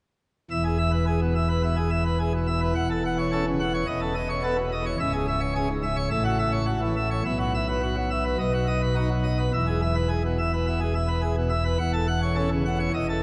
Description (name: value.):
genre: classical, organ toccata.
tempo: 106 BPM.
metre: 4/4.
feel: straight.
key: E major.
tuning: A4 = 443 Hz.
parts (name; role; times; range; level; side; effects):
pipe organ, plenum; solo; 0.5-13.2 s; C#1 to F#5; -25 LUFS; equal; none.
room: wet cathedral reverb, RT60 4.9 s.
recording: nothing above 10.5 kHz.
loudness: -25 LUFS.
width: mono.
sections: 0.5-13.2 A section.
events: none.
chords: 0.5 E; 2.8 F#m/E; 3.9 B9/E; 5.0 C#m; 6.1 F#m7/A; 7.2 Bsus4; 8.4 B; 9.5 E; 11.8 F#m/E.